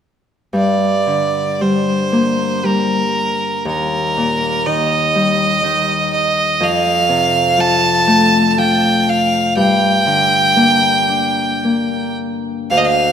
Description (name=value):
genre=celtic folk, Celtic slow air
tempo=54-62 BPM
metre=3/4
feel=rubato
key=G minor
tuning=A4 = 440 Hz
part: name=Celtic harp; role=accompaniment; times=0.5-13.1 s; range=D2 to D4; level=-17 LUFS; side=left 2 dB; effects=none
part: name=clear fiddle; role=melody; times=0.6-13.1 s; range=Bb4 to A5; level=-15 LUFS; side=right 2 dB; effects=none
room=wet concert hall reverb, RT60 2.5 s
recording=minimal, uncompressed stereo recording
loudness=-13 LUFS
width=side -8 dB against mid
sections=0.5-12.7 A section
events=none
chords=0.5 Gm; 3.6 Eb; 6.6 F; 9.6 Gm